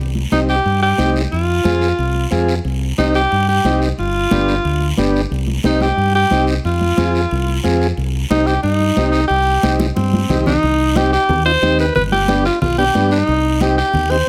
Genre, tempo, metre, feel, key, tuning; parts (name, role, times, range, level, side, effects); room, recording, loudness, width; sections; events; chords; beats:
latin, cumbia; 180 BPM; 4/4; straight; C minor, C harmonic minor from 10.6 s; A4 = 439 Hz
fingered electric bass; bass; 0.0-14.2 s; G1 to G2; -21 LUFS; equal
congas; percussion; 0.1-14.3 s; -25 LUFS; equal
bright alto saxophone; melody; 0.3-14.3 s; C4 to C5; -19 LUFS; equal
overdriven combo organ; accompaniment; 0.3-14.2 s; B3 to Ab4; -23 LUFS; equal
guiro; percussion; 0.3-14.3 s; -32 LUFS; equal
light reverb; -16 LUFS; mono
0.0-10.6 A section; 10.6-14.3 B section
drum fill 9.8-10.6
0.0 Cm; 1.3 Fm; 2.7 Cm; 4.0 G7; 5.3 Cm; 6.6 Fm; 8.0 Cm; 12.0 G; 13.3 Cm
0.32 0.66 0.99 | 1.32 1.65 1.99 2.32 | 2.65 2.98 3.32 3.65 | 3.98 4.32 4.65 4.98 | 5.31 5.65 5.98 6.31 | 6.64 6.98 7.31 7.64 | 7.97 8.31 8.64 8.97 | 9.30 9.63 9.97 10.30 | 10.63 10.96 11.29 11.63 | 11.96 12.29 12.62 12.95 | 13.28 13.62 13.95 14.28